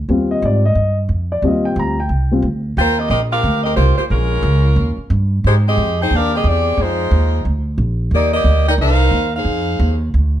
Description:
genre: jazz, big band swing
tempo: 179 BPM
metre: 4/4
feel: swing 62% on 8ths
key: Eb major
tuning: A4 = 440 Hz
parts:
  - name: upright bass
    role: bass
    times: 0.0-10.4 s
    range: Bb1 to Ab2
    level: -16 LUFS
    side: right 1 dB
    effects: none
  - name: dark concert grand piano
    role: accompaniment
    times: 0.1-2.4 s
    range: G3 to Bb5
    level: -17 LUFS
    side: left 2 dB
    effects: none
  - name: warm saxophone section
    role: melody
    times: 2.8-10.0 s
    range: Ab3 to G5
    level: -17 LUFS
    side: equal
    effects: plate reverb
room: light reverb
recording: dark, warm production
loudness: -14 LUFS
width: side -11 dB against mid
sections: 0.0-2.8 A section; 2.8-10.4 B section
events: grand piano solo 0.0-2.8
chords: 0.1 Eb69; 4.1 Bbm7; 4.8 Eb7; 5.4 Abmaj7; 6.8 Fm7; 7.5 Bb; 8.1 Ebmaj7; 8.8 Cm7; 9.5 Fm7

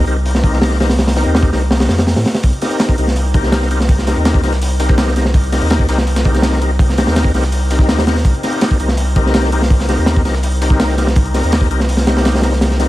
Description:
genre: drum and bass, jungle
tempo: 165 BPM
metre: 4/4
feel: straight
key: C minor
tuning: A4 = 439 Hz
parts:
  - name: overdriven tonewheel organ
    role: stabs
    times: 0.0-12.9 s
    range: C4 to Bb4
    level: -20 LUFS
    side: left 2 dB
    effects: chorus vibrato, slow rotary speaker, dub echo
  - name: saturated sub bass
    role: bass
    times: 0.0-12.9 s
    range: C2 to A2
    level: -16 LUFS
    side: equal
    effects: none
  - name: crunchy breakbeat drum kit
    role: drums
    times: 0.1-12.9 s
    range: hi-hat, kick drum, snare drum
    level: -15 LUFS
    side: equal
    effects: none
  - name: breakbeat sampler-style drum kit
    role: drums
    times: 2.4-12.9 s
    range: hi-hat, snare drum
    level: -30 LUFS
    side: right 1 dB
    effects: high-pass filter on hats, high-pass filter on snare, analog delay
room: small room ambience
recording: echo-heavy mix, vinyl crackle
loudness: -12 LUFS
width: side -16 dB against mid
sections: 0.0-12.9 A section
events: none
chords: 0.0 Cm7

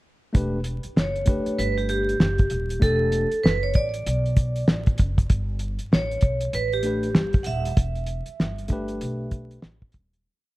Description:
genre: hip hop, jazz-hop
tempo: 97 BPM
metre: 4/4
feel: swing 61% on 16ths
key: E dorian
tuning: A4 = 440 Hz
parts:
  - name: tine electric piano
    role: accompaniment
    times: 0.3-9.6 s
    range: A3 to B4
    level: -30 LUFS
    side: left 1 dB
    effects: none
  - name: upright bass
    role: bass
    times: 0.3-10.2 s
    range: D#1 to B1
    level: -28 LUFS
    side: equal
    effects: none
  - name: cloth-damped thuddy drum kit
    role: drums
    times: 0.3-10.2 s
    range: hi-hat, kick drum, snare drum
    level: -20 LUFS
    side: equal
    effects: none
  - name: vibraphone with hard mallets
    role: melody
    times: 1.0-9.6 s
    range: G4 to F#5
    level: -27 LUFS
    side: right 2 dB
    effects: slapback echo
room: small room ambience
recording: dark, warm production, vinyl crackle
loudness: -21 LUFS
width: side -18 dB against mid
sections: 0.3-10.2 A section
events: fade-out 7.8-10.2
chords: 0.3 Em9; 5.3 Gadd9; 7.8 Em7

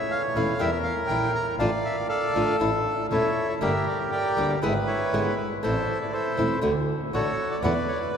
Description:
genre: tango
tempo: 120 BPM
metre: 4/4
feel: rubato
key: D harmonic minor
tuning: A4 = 440 Hz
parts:
  - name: bandoneon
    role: melody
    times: 0.0-8.2 s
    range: E4 to Bb5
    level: -25 LUFS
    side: equal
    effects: none
  - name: nylon-string guitar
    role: accompaniment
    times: 0.4-7.7 s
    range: B2 to G#4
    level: -28 LUFS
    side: left 1 dB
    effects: none
  - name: rich double bass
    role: bass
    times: 0.4-7.8 s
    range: E1 to E2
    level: -31 LUFS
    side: right 1 dB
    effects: none
room: wet cathedral reverb, RT60 6.0 s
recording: recorded in a church or concert hall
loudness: -23 LUFS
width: side -7 dB against mid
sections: 0.0-8.2 A section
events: none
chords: 0.0 A; 0.6 Edim; 1.6 Dm/A; 2.6 A; 3.6 Gm; 4.6 E7/G#; 5.6 Am; 6.6 D; 7.6 E7

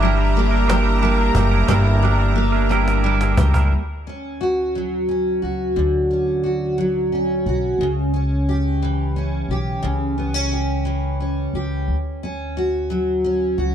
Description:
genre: six-eight pop ballad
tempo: 59 BPM (dotted quarters)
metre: 6/8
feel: straight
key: D major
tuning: A4 = 440 Hz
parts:
  - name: picked steel-string acoustic guitar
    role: accompaniment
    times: 0.0-13.7 s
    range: G2 to G4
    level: -20 LUFS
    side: equal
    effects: double-tracked left and right
  - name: rich studio string section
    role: sustained chords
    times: 0.0-3.7 s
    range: G4 to Bb5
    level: -26 LUFS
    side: left 3 dB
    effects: none
  - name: twangy electric guitar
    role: arpeggios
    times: 0.0-3.7 s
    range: G3 to Bb4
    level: -23 LUFS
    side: right 7 dB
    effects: analog chorus, slapback echo
  - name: upright bass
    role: bass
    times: 0.0-13.7 s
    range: F#1 to D2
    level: -22 LUFS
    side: equal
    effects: none
  - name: cajon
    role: drums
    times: 0.0-3.7 s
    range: none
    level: -24 LUFS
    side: equal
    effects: none
room: small room ambience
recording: dark, warm production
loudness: -17 LUFS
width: side -9 dB against mid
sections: 0.0-3.7 A section; 3.7-13.7 B section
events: drum fill 2.7-3.7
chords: 0.0 Gm6; 3.7 Dmaj7; 7.8 Em6; 11.9 Dmaj7

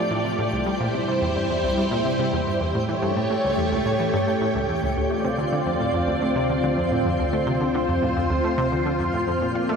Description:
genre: ambient, sequencer-driven space music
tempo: 108 BPM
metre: 4/4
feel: straight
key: unclear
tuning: A4 = 440 Hz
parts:
  - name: string machine, full ensemble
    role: sustained chords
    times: 0.0-9.8 s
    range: G3 to D5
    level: -22 LUFS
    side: equal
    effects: ensemble chorus
  - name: analog pluck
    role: riff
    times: 0.0-9.8 s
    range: C2 to F4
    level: -26 LUFS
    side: equal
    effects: chorus, ping-pong delay
  - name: twinkling granular texture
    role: texture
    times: 0.0-9.8 s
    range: C4 to G5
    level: -33 LUFS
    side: equal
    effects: built-in reverb, ensemble chorus
  - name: analog drone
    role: bass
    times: 5.7-9.8 s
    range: Bb1 to D2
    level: -34 LUFS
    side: equal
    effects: chorus
room: wet huge ambient reverb, RT60 7.2 s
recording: dreamy mix soaked in reverb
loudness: -20 LUFS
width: side -6 dB against mid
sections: 0.0-5.0 A section; 5.0-9.8 B section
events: none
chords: 0.0 F; 0.5 C; 2.7 A7; 5.0 Dm7

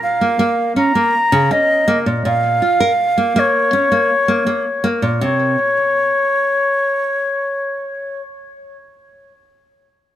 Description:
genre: folktronica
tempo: 81 BPM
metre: 4/4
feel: straight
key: unclear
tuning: A4 = 440 Hz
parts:
  - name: bright baroque flute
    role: melody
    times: 0.0-8.2 s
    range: Db5 to Bb5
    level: -16 LUFS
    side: left 1 dB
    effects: digital delay
  - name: nylon-string guitar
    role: arpeggios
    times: 0.2-5.6 s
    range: Bb2 to Bb4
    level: -18 LUFS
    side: right 1 dB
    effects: digital delay
room: light reverb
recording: none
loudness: -14 LUFS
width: side -11 dB against mid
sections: 0.0-5.2 A section; 5.2-8.2 B section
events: none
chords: 0.0 Bbm; 5.2 N.C.

